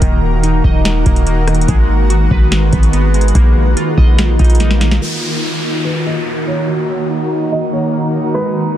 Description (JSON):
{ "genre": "hip hop, atmospheric cloud-rap", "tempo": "144 BPM", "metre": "4/4", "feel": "half-time", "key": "Eb minor", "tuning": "A4 = 442 Hz", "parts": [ { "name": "shimmering ambient pad", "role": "sustained chords", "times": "0.0-8.8 s", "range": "Eb3 to Cb5", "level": "-17 LUFS", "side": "equal", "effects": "chorus, built-in reverb, sidechain pumping, low-pass filter" }, { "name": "glassy digital keys", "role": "arpeggios", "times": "0.0-8.8 s", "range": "Eb3 to Eb5", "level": "-22 LUFS", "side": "right 3 dB", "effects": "chorus, low-pass filter, tape echo" }, { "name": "warm 808-style bass", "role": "bass", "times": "0.0-5.0 s", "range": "Eb1 to Bb1", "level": "-13 LUFS", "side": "equal", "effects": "none" }, { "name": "booming analog drum machine", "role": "drums", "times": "0.0-5.0 s", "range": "hi-hat, kick drum, rim click, snare drum", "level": "-13 LUFS", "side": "equal", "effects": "overdrive, vintage 12-bit sampler grit" }, { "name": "felt-muted upright piano", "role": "melody", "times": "5.0-8.7 s", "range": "Bb4 to Eb5", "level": "-23 LUFS", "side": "right 2 dB", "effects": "low-pass filter, tape echo" }, { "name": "downlifter", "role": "sound effects", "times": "5.0-8.4 s", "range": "none", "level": "-24 LUFS", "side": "equal", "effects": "none" } ], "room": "digital ambience", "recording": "dense, heavily limited modern master", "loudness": "-11 LUFS", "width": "side -12 dB against mid", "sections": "0.0-5.0 A section; 5.0-8.8 B section", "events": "drum fill 4.6-5.0; filter sweep 5.0-8.8", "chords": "0.0 Ebm; 1.7 Abm7; 3.4 Bbsus4; 5.0 Ebm", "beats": "| 0.02 0.43 0.85 1.27 | 1.68 2.10 2.52 2.93 | 3.35 3.77 4.18 4.60 | 5.02 5.43 5.85 6.27 | 6.68 7.10 7.52 7.93 | 8.35 8.77" }